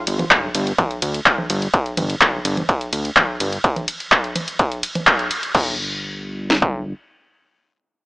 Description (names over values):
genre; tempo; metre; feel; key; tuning
melodic techno; 126 BPM; 4/4; straight; unclear; A4 = 440 Hz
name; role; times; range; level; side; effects
fat analog bass; bass; 0.1-6.9 s; G1 to D2; -24 LUFS; equal; sidechain pumping
punchy analog drum machine; drums; 0.1-5.6 s; congas, crash cymbal, handclaps, hi-hat, ride cymbal; -18 LUFS; equal; overdrive
techno drum kit; drums; 0.3-6.7 s; kick drum, snare drum; -19 LUFS; equal; distortion, overdrive
room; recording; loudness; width
light reverb; small speaker sound; -17 LUFS; side -23 dB against mid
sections
0.0-5.5 A section; 5.5-8.1 B section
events
drop 0.0-5.5; band accent 5.1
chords
none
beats
0.31 0.79 1.26 | 1.74 2.21 2.69 3.17 | 3.64 4.12 4.59 5.07 | 5.55 6.02 6.50